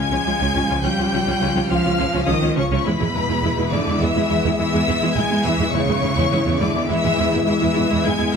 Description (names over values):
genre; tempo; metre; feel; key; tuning
cinematic, hybrid orchestral and electronic film score; 104 BPM; 5/4; straight; unclear; A4 = 439 Hz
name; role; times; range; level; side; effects
warm symphonic violin section; melody; 0.0-8.3 s; B5 to G#6; -26 LUFS; left 3 dB; none
warm symphonic violin section; second line; 0.0-8.4 s; B4 to G#5; -25 LUFS; left 4 dB; none
warm symphonic viola section; accompaniment; 0.0-8.4 s; G#3 to E#4; -25 LUFS; equal; none
hollow soft pad; sustained chords; 0.0-8.4 s; E#3 to E#5; -28 LUFS; equal; chorus
mellow French horn section; sustained chords; 0.0-8.4 s; E#3 to E#4; -26 LUFS; left 5 dB; none
thumb-piano-like synth pluck; arpeggios; 0.0-8.3 s; C#3 to E4; -28 LUFS; left 3 dB; chorus
rich symphonic cello section; bass; 0.0-8.3 s; B2 to G#3; -25 LUFS; right 3 dB; none
warm studio double bass section; bass; 0.0-8.3 s; C#2 to E2; -24 LUFS; right 5 dB; none
room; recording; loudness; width
moderate scoring stage reverb, RT60 1.6 s; none; -17 LUFS; side -6 dB against mid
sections
0.0-8.4 A section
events
none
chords
0.0 C#; 2.9 E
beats
0.55 1.13 1.71 2.29 | 2.86 3.44 4.01 4.59 5.17 | 5.75 6.32 6.90 7.48 8.05